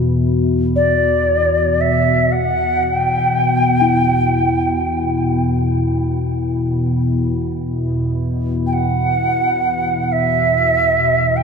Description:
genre	world meditative, free-time meditation music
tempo	free time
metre	none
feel	none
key	E minor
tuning	A4 = 439 Hz
part	glassy FM pad	drone	0.0-11.4 s	E2 to B2	-18 LUFS	left 1 dB	ensemble chorus, built-in reverb
part	quartz singing bowl	texture	0.0-11.4 s	E4 to F#4	-25 LUFS	left 4 dB	none
part	mellow Native American-style cedar flute	melody	0.8-11.4 s	D5 to G5	-16 LUFS	right 1 dB	dub echo
room	wet spring reverb, RT60 1.3 s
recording	echo-heavy mix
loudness	-14 LUFS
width	side -5 dB against mid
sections	0.0-11.4 A section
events	none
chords	none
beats	free time

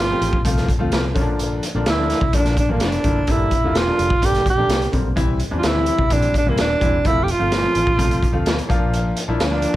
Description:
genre	uptempo 1960s-style soul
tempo	128 BPM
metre	4/4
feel	straight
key	unclear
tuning	A4 = 439 Hz
part	breathy tenor saxophone	melody	0.0-9.8 s	Bb3 to G4	-20 LUFS	right 2 dB	none
part	vintage muted fingered electric bass	bass	0.0-9.8 s	Eb1 to E2	-24 LUFS	equal	none
part	clear baby grand piano	accompaniment	0.1-9.7 s	D3 to G4	-24 LUFS	left 2 dB	none
part	raw garage drum kit	drums	0.2-9.8 s	hi-hat, kick drum, snare drum	-20 LUFS	equal	none
room	light reverb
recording	none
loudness	-16 LUFS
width	side -15 dB against mid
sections	0.0-9.8 A section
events	none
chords	0.0 F; 1.2 Bb; 3.3 Gm; 5.2 C; 7.0 F; 8.7 Bb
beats	0.45 0.93 | 1.40 1.87 2.34 2.81 | 3.28 3.75 4.22 4.69 | 5.17 5.63 6.11 6.58 | 7.04 7.51 7.99 8.45 | 8.92 9.39

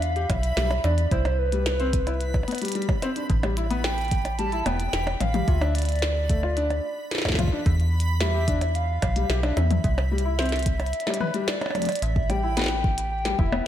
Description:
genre	IDM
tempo	110 BPM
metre	4/4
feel	straight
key	A minor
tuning	A4 = 440 Hz
part	warbly nostalgic lead	melody	0.0-13.7 s	B4 to A5	-29 LUFS	equal	chorus, slapback echo, ping-pong delay
part	metallic FM bass	bass	0.0-13.6 s	E1 to E2	-25 LUFS	equal	none
part	glitchy drum kit	drums	0.0-13.6 s	hi-hat, percussion blips, snare drum, toms	-30 LUFS	left 1 dB	slapback echo
part	backwards swelling texture	texture	0.0-12.0 s	B5	-39 LUFS	right 2 dB	built-in reverb
part	felt-muted upright piano	arpeggios	0.2-13.6 s	G3 to B4	-30 LUFS	left 3 dB	slapback echo, ping-pong delay
part	electronic kick drum	drums	0.3-13.5 s	none	-25 LUFS	equal	none
room	light reverb, digital ambience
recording	none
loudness	-22 LUFS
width	side -11 dB against mid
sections	0.0-12.0 A section; 12.0-13.7 B section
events	drum fill 11.8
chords	0.0 Em7; 1.1 Cmaj7(no3); 3.3 Asus2; 5.5 N.C.; 7.7 Em; 9.8 Cmaj9; 12.0 A5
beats	0.02 0.57 | 1.11 1.66 2.21 2.75 | 3.30 3.84 4.39 4.93 | 5.48 6.02 6.57 7.12 | 7.66 8.21 8.75 9.30 | 9.84 10.39 10.93 11.48 | 12.02 12.57 13.12 13.66

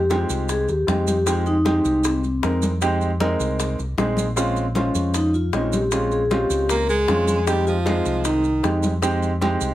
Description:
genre	Afro-Cuban jazz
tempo	155 BPM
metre	4/4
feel	straight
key	F minor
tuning	A4 = 440 Hz
part	vibraphone with soft mallets	melody	0.0-8.8 s	C4 to Bb4	-22 LUFS	left 1 dB	none
part	fingered electric bass	bass	0.0-9.7 s	Bb1 to F2	-24 LUFS	equal	none
part	warm baby grand piano	accompaniment	0.1-9.7 s	Ab3 to C5	-24 LUFS	right 2 dB	none
part	bongos	percussion	0.1-9.7 s	none	-30 LUFS	left 7 dB	none
part	congas	percussion	0.1-9.6 s	none	-28 LUFS	left 1 dB	none
part	maracas	percussion	0.1-9.7 s	none	-33 LUFS	right 7 dB	none
part	bright baritone saxophone	second line	6.7-8.8 s	Eb3 to Bb3	-26 LUFS	right 4 dB	none
room	light reverb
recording	none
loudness	-18 LUFS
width	side -14 dB against mid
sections	0.0-9.7 A section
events	none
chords	0.0 Fm7; 4.4 Bbm7; 7.5 Fm7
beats	0.11 0.49 0.88 | 1.27 1.66 2.04 2.43 | 2.82 3.21 3.60 3.98 | 4.37 4.76 5.15 5.54 | 5.92 6.31 6.70 7.09 | 7.48 7.86 8.25 8.64 | 9.03 9.42

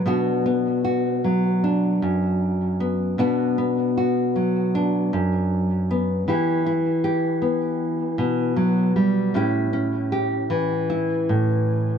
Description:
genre	folk, solo fingerstyle acoustic guitar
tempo	77 BPM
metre	4/4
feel	rubato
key	B minor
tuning	A4 = 440 Hz
part	nylon-string guitar	solo	0.0-12.0 s	F#2 to G4	-20 LUFS	equal	tape echo
room	small room ambience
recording	dry, close 1970s-style studio recording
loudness	-20 LUFS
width	side -7 dB against mid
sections	0.0-12.0 A section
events	none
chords	0.0 Bm; 6.3 Em; 9.3 A7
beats	| 0.05 0.84 1.62 2.40 | 3.19 3.97 4.75 5.52 | 6.28 7.04 7.80 8.57 | 9.35 10.12 10.90 11.69

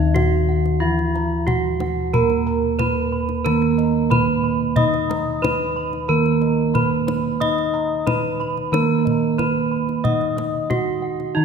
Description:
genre	Javanese gamelan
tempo	91 BPM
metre	4/4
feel	straight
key	Eb pelog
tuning	A4 = 441 Hz
part	gamelan-type bronze metallophone	melody	0.0-11.4 s	Eb4 to Eb5	-23 LUFS	right 2 dB	none
part	gamelan-type bronze metallophone	accompaniment	0.0-11.4 s	Eb3 to Eb4	-23 LUFS	right 5 dB	none
part	gamelan-type bossed gongs	arpeggios	0.0-11.4 s	Eb5 to Cb6	-30 LUFS	left 6 dB	none
part	gamelan-type bronze metallophone	arpeggios	0.0-11.4 s	Eb5 to Eb6	-30 LUFS	right 4 dB	none
part	gamelan-type bossed gongs	bass	0.0-11.4 s	Eb2 to Eb5	-24 LUFS	left 3 dB	none
part	kendang	percussion	0.2-11.3 s	none	-26 LUFS	left 1 dB	none
room	wet concert hall reverb, RT60 2.4 s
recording	minimal, uncompressed stereo recording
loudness	-18 LUFS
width	side -6 dB against mid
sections	0.0-11.4 A section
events	none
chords	none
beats	0.15 0.81 1.47 | 2.13 2.79 3.45 4.11 | 4.77 5.43 6.09 6.75 | 7.41 8.06 8.72 9.38 | 10.04 10.70 11.36

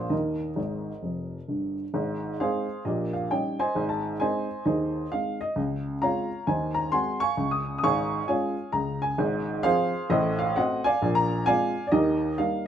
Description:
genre	jazz, stride piano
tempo	132 BPM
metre	4/4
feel	swing 63% on 8ths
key	Ab major, Eb major from 9.2 s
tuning	A4 = 440 Hz
part	dark upright piano	solo	0.0-12.7 s	F1 to Eb6	-24 LUFS	equal	none
room	moderate studio reverb, RT60 0.9 s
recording	minimal, uncompressed stereo recording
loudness	-24 LUFS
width	side -9 dB against mid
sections	0.0-1.9 A section; 1.9-12.7 B section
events	upright piano fill 0.6-1.9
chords	0.1 Eb; 1.9 Ab; 2.8 Eb7/Bb; 3.8 Ab; 5.6 Dbmaj7; 6.5 Ab7/Eb; 7.4 Db; 9.2 Fm/Ab; 10.1 Adim7; 11.0 Bb9; 11.9 Eb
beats	| 0.12 0.57 1.03 1.48 | 1.94 2.39 2.85 3.30 | 3.75 4.21 4.66 5.12 | 5.57 6.02 6.48 6.93 | 7.38 7.84 8.29 8.75 | 9.20 9.65 10.11 10.56 | 11.02 11.47 11.92 12.38

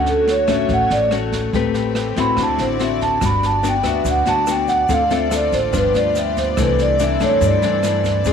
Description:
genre	bossa nova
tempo	143 BPM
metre	4/4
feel	straight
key	unclear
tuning	A4 = 442 Hz
part	vibraphone with soft mallets	melody	0.0-8.3 s	A4 to B5	-18 LUFS	right 2 dB	none
part	nylon-string guitar	accompaniment	0.0-8.3 s	G2 to B4	-22 LUFS	left 10 dB	none
part	rich studio string section	sustained chords	0.0-8.3 s	A3 to D5	-28 LUFS	left 8 dB	none
part	upright bass	bass	0.0-8.3 s	G1 to G2	-24 LUFS	right 1 dB	none
part	jazz brush drum kit	drums	0.1-8.3 s	kick drum, rim click, snare drum	-26 LUFS	right 4 dB	none
part	egg shaker	percussion	3.2-8.3 s	none	-37 LUFS	left 12 dB	none
room	light reverb, small room ambience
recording	1960s-style stereo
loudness	-15 LUFS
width	side -7 dB against mid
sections	0.0-8.3 A section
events	vibraphone solo 0.0-8.3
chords	0.0 Dmaj7; 1.5 Am9; 2.4 D9; 3.2 Gmaj7; 4.9 Dm7; 5.7 G7; 6.6 C69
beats	0.27 0.69 1.11 | 1.53 1.95 2.37 2.79 | 3.21 3.63 4.05 4.47 | 4.89 5.31 5.73 6.15 | 6.57 6.99 7.41 7.83 | 8.25

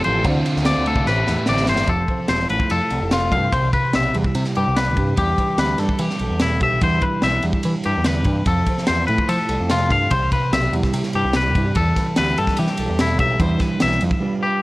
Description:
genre	math rock and midwest emo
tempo	146 BPM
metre	4/4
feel	straight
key	unclear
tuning	A4 = 440 Hz
part	mellow electric guitar	accompaniment	0.0-14.6 s	A2 to C5	-23 LUFS	right 2 dB	none
part	twangy electric guitar	arpeggios	0.0-14.6 s	E4 to F5	-22 LUFS	left 3 dB	digital delay
part	overdriven electric guitar	riff	0.0-1.9 s	A2 to F4	-25 LUFS	equal	none
part	crisp fusion drum kit	drums	0.0-14.2 s	kick drum, ride cymbal, snare drum	-23 LUFS	equal	none
part	growling picked electric bass	bass	0.1-14.1 s	E1 to F3	-23 LUFS	equal	overdrive
room	light reverb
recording	worn, warbling old tape, cassette tape, warbly pitch drift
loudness	-17 LUFS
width	side -19 dB against mid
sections	0.0-1.9 A section; 1.9-14.6 B section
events	drum fill 1.1-1.9; break 14.2-14.6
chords	0.2 Dm9; 1.1 Am9; 1.9 Fmaj7; 3.5 Cmaj7; 5.2 Em7; 6.8 Cmaj9; 8.5 Fmaj7; 10.1 Cmaj7; 11.8 Em7; 13.4 Cmaj9/E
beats	| 0.24 0.65 1.06 1.47 | 1.88 2.29 2.71 3.12 | 3.53 3.94 4.36 4.77 | 5.18 5.59 6.00 6.42 | 6.83 7.24 7.65 8.06 | 8.47 8.88 9.29 9.71 | 10.12 10.53 10.94 11.35 | 11.76 12.17 12.58 12.99 | 13.40 13.81 14.22

